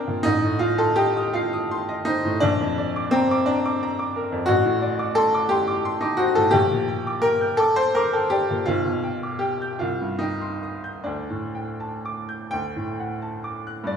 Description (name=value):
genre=classical, romantic character piece for solo piano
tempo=39-61 BPM (dotted quarters)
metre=6/8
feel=rubato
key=Bb major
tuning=A4 = 440 Hz
part: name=bright baby grand piano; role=solo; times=0.0-14.0 s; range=A1 to C7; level=-20 LUFS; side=equal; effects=none
room=wet recital hall reverb, RT60 1.7 s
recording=heard from further back in the room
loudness=-20 LUFS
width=side -7 dB against mid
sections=0.0-13.9 A section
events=none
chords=0.2 F7/A; 2.4 Bb; 4.5 D7/A; 6.5 Gm/Bb; 8.7 G7/B; 9.8 Cm; 11.1 Dsus4; 12.5 D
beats=| 0.24 1.33 | 2.40 3.47 | 4.47 5.50 | 6.54 7.60 | 8.66 9.80 | 11.05 12.53 | 13.88